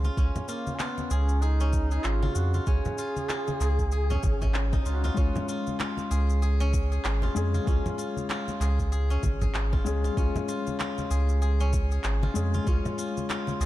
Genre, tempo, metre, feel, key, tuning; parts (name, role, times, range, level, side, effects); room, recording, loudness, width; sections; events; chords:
organic downtempo; 96 BPM; 4/4; swing 59% on 16ths; Db major; A4 = 440 Hz
steel-string zither; arpeggios; 0.0-13.7 s; Db4 to Ab4; -34 LUFS; left 1 dB; ping-pong delay
warm sub bass; bass; 0.0-13.7 s; Ab1 to F2; -25 LUFS; equal; sidechain pumping
electronic cabasa and handclaps; drums; 0.0-13.7 s; -36 LUFS; equal
congas; percussion; 0.0-13.6 s; -36 LUFS; left 1 dB
mellow duduk; melody; 0.2-5.2 s; Bb3 to Ab4; -34 LUFS; right 2 dB; digital delay
electronic kick drum; drums; 0.2-12.8 s; -27 LUFS; equal
swell; sound effects; 4.2-5.2 s; -42 LUFS; left 3 dB
felt-muted upright piano; accompaniment; 5.1-13.7 s; Ab3 to Ab4; -33 LUFS; left 5 dB; sidechain pumping, ping-pong delay
small room ambience; dark, warm production; -24 LUFS; side -15 dB against mid
0.0-13.7 A section
swell 4.2-5.2
0.0 Dbadd9